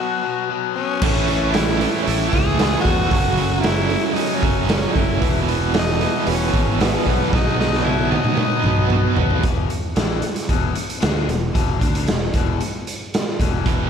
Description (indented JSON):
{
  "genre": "classic rock",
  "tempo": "114 BPM",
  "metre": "4/4",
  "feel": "straight",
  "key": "E major",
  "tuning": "A4 = 441 Hz",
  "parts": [
    { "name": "raspy tenor saxophone", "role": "melody", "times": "0.0-9.2 s", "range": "B3 to G#4", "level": "-24 LUFS", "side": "left 3 dB", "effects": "slapback echo" },
    { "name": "overdriven semi-hollow guitar", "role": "riff", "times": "0.0-13.9 s", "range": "E2 to D4", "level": "-25 LUFS", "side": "left 10 dB", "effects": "spring reverb, slapback echo" },
    { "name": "overdriven reed electric piano", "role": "accompaniment", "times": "1.0-9.4 s", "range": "B3 to E5", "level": "-29 LUFS", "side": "right 9 dB", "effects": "fast tremolo" },
    { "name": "cranked stack guitar", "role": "riff", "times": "1.0-9.4, 13.7-13.9 s", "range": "E2 to B3", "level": "-24 LUFS", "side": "right 12 dB", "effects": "overdrive, tremolo" },
    { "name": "growling fingered electric bass", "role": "bass", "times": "1.0-13.9 s", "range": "E1 to E2", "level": "-23 LUFS", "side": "equal", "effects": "overdrive" },
    { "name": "raw garage drum kit", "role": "drums", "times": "1.0-13.8 s", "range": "crash cymbal, hi-hat, kick drum, snare drum, toms", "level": "-20 LUFS", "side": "right 1 dB", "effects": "none" }
  ],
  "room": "light reverb, studio ambience",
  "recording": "none",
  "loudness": "-17 LUFS",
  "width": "side -7 dB against mid",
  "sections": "0.0-9.4 A section; 9.4-13.9 B section",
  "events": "drum fill 7.3-9.4",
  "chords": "0.0 B5; 1.0 A; 3.1 F#m; 5.2 E; 7.3 B; 9.4 E5"
}